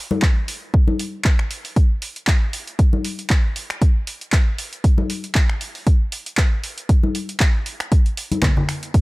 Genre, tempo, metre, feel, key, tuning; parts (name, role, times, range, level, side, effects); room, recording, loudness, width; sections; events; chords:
house; 117 BPM; 4/4; swing 55% on 16ths
congas; percussion; 0.1-8.7 s; -23 LUFS; left 3 dB
electronic kick drum; drums; 0.2-9.0 s; -16 LUFS; equal; overdrive
punchy analog drum machine; drums; 0.2-9.0 s; finger snaps, handclaps, hi-hat; -26 LUFS; equal
little or no reverb; -17 LUFS; side -22 dB against mid
0.0-9.0 A section